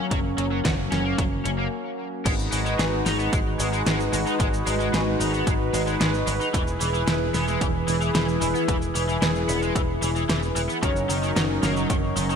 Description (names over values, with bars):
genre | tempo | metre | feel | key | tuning
synthwave | 112 BPM | 4/4 | straight | G# minor | A4 = 440 Hz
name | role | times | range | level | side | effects
brassy analog pad | sustained chords | 0.0-12.4 s | E3 to B4 | -26 LUFS | equal | chorus, sidechain pumping
cranked stack guitar | riff | 0.0-12.4 s | D#3 to G#4 | -30 LUFS | equal | overdrive, analog chorus, digital delay
picked electric bass | bass | 0.1-12.4 s | E1 to G#1 | -28 LUFS | equal | none
electronic kick drum | drums | 0.1-12.0 s | none | -26 LUFS | equal | overdrive, studio ambience
pop drum kit | drums | 0.1-12.4 s | cabasa, crash cymbal, hi-hat, snare drum | -28 LUFS | equal | studio ambience
chorused polysynth | stabs | 10.8-12.4 s | F#3 to C#5 | -28 LUFS | left 1 dB | ping-pong delay
room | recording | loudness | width
moderate lush hall reverb, RT60 2.5 s | bright 1980s-style digital production | -21 LUFS | side -7 dB against mid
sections
0.0-2.3 A section; 2.3-12.4 B section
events
break 1.7-2.3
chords
0.0 F#; 2.3 G#m7; 6.5 E; 10.8 D#m7/F#